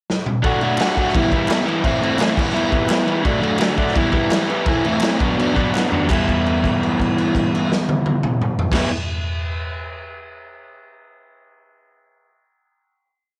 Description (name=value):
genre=garage rock duo or trio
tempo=169 BPM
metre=4/4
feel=straight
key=E minor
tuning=A4 = 440 Hz
part: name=raw garage drum kit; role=drums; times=0.1-8.8 s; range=crash cymbal, kick drum, snare drum, toms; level=-23 LUFS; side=equal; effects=none
part: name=crunchy overdriven guitar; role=riff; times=0.4-8.9 s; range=A2 to F#4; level=-20 LUFS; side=equal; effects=none
part: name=group handclap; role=percussion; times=0.8-6.3 s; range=none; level=-37 LUFS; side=equal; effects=none
room=light reverb, studio reverb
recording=none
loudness=-19 LUFS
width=mono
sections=0.0-0.4 pickup bar; 0.4-6.1 pre-chorus; 6.1-8.9 final chord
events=drum fill 0.1-0.4, 5.7-6.1; held note 6.1-8.7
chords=0.4 D; 1.1 Em; 1.8 Am; 2.4 Em; 3.3 D; 4.0 Em; 4.7 Am; 5.2 Bm; 6.1 Em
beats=0.07 | 0.42 0.78 1.13 1.48 | 1.84 2.19 2.54 2.90 | 3.25 3.61 3.96 4.32 | 4.67 5.03 5.38 5.74 | 6.09 6.45 6.80 7.16 | 7.51 7.87 8.22 8.58